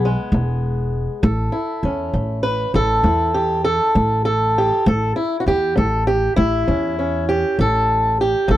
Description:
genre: acoustic country blues, solo or duo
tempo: 66 BPM (dotted quarters)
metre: 12/8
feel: straight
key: unclear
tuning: A4 = 441 Hz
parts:
  - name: fingerpicked swing-style acoustic guitar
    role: melody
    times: 0.0-8.6 s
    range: E2 to B4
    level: -18 LUFS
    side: equal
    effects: none
  - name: upright bass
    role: bass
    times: 0.0-8.6 s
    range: E1 to E2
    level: -20 LUFS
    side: equal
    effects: none
room: little or no reverb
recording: dry, close 1970s-style studio recording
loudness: -16 LUFS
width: side -13 dB against mid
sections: 0.0-8.6 A section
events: none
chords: 0.0 E; 1.2 A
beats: 0.32 | 1.23 2.13 3.04 3.95 | 4.86 5.77 6.68 7.58 | 8.49

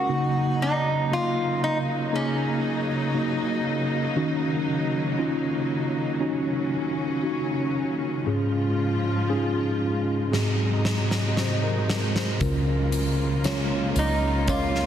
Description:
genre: pop ballad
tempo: 58 BPM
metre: 4/4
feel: straight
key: Db major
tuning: A4 = 440 Hz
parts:
  - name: lap resonator guitar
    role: melody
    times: 0.0-3.6, 14.0-14.9 s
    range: Db4 to Gb4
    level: -26 LUFS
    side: equal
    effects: none
  - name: mellow tine electric piano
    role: accompaniment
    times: 0.0-14.9 s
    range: Ab2 to F5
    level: -25 LUFS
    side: equal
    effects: medium stereo tremolo
  - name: warm studio string section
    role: sustained chords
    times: 0.0-14.9 s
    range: Ab2 to F4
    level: -29 LUFS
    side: equal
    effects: none
  - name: huge arena drum kit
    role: drums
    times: 10.3-14.9 s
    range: hi-hat, kick drum, snare drum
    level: -28 LUFS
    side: equal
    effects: soft clipping on snare
  - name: vintage muted fingered electric bass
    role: bass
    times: 12.4-14.9 s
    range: Db2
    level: -27 LUFS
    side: equal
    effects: none
room: moderate concert hall reverb, RT60 2.3 s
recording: dense, heavily limited modern master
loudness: -22 LUFS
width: side -9 dB against mid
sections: 0.0-14.9 A section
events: drum fill 10.3-12.4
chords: 0.1 Gb6/Db; 4.2 Ebm7; 8.3 Db/Ab; 10.3 Ab7; 12.4 Db6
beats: | 0.09 1.11 2.13 3.15 | 4.17 5.19 6.21 7.24 | 8.27 9.29 10.32 11.36 | 12.41 13.44 14.48

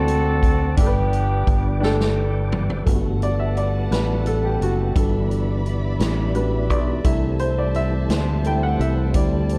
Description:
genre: slow gospel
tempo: 57 BPM (dotted quarters)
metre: 6/8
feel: straight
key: G major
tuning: A4 = 437 Hz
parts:
  - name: dark horn section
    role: melody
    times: 0.0-2.2 s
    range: B3 to A4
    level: -27 LUFS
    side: equal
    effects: none
  - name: warm upright piano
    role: accompaniment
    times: 0.0-9.6 s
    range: G2 to G5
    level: -28 LUFS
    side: equal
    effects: none
  - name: tonewheel organ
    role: sustained chords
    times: 0.0-9.6 s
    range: D3 to D6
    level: -32 LUFS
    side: equal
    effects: fast rotary speaker, overdrive, chorus vibrato
  - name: fingered electric bass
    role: bass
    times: 0.0-9.6 s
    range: F#1 to D2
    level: -24 LUFS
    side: equal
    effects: none
  - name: swinging big-band drum kit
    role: drums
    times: 0.1-9.6 s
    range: hi-hat, kick drum, snare drum, toms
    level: -26 LUFS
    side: equal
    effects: none
  - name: warm studio string section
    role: sustained chords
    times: 2.8-9.6 s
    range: B4 to B5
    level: -37 LUFS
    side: equal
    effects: none
room: light reverb, small room ambience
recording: dark, warm production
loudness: -21 LUFS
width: mono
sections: 0.0-2.9 A section; 2.9-9.6 B section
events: drum fill 1.8-2.9; upright piano solo 2.9-9.6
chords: 0.0 D7; 0.8 G; 2.9 Gmaj9; 5.0 Em7/G; 7.1 C6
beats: | 0.78 1.82 | 2.87 3.91 | 4.96 6.01 | 7.05 8.10 | 9.15

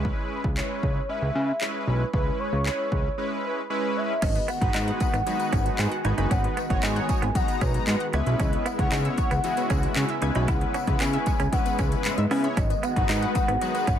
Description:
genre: dance-pop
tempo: 115 BPM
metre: 4/4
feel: straight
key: G# minor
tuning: A4 = 440 Hz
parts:
  - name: big bright polysynth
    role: accompaniment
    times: 0.0-14.0 s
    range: G#3 to A#5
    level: -30 LUFS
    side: left 1 dB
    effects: chorus, sidechain pumping
  - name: fat analog bass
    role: bass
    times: 0.0-14.0 s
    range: F#1 to C#3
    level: -26 LUFS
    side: equal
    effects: sidechain pumping
  - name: house drum kit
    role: drums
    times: 0.0-14.0 s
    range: crash cymbal, handclaps, hi-hat, kick drum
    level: -27 LUFS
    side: equal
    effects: overdrive
  - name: warm velvety synth lead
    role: melody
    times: 0.6-14.0 s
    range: B4 to G#5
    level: -30 LUFS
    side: equal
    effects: chorus
  - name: filtered supersaw swell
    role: sustained chords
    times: 4.2-14.0 s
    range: C#3 to F#4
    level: -34 LUFS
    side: equal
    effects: phaser, sidechain pumping
  - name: analog pluck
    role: arpeggios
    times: 4.2-14.0 s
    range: E3 to G#6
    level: -38 LUFS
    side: left 3 dB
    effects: chorus, sidechain pumping, ping-pong delay
  - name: direct-recorded clean electric guitar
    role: riff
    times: 4.2-14.0 s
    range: B3 to E4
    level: -33 LUFS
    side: right 5 dB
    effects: lush chorus
  - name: tambourine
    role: percussion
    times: 4.2-14.0 s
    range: none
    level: -45 LUFS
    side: left 15 dB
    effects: none
room: digital ambience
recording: none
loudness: -22 LUFS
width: side -9 dB against mid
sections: 0.0-4.2 A section; 4.2-14.0 B section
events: none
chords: 0.0 C#m7; 4.2 G#m7; 8.1 C#m7; 12.6 G#m7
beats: | 0.05 0.57 1.09 1.61 | 2.14 2.66 3.18 3.70 | 4.22 4.74 5.27 5.79 | 6.31 6.83 7.35 7.88 | 8.40 8.92 9.44 9.96 | 10.48 11.01 11.53 12.05 | 12.57 13.09 13.61

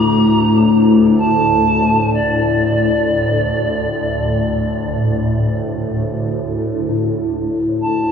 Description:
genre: world meditative, free-time meditation music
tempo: free time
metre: none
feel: none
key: unclear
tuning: A4 = 439 Hz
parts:
  - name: bright reedy polished pan flute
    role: melody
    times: 0.0-8.1 s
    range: D5 to Bb5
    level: -19 LUFS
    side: right 2 dB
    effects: dub echo
  - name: swarming drone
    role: drone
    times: 0.0-8.1 s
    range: D2 to A2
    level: -15 LUFS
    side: left 1 dB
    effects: built-in reverb, phaser
  - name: bronze singing bowl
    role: texture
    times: 6.9-8.1 s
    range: E4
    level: -19 LUFS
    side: left 5 dB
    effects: none
room: wet echo chamber reverb, RT60 2.3 s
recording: echo-heavy mix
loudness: -14 LUFS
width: side -7 dB against mid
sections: 0.0-6.5 A section; 6.5-8.1 A section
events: none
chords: none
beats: free time

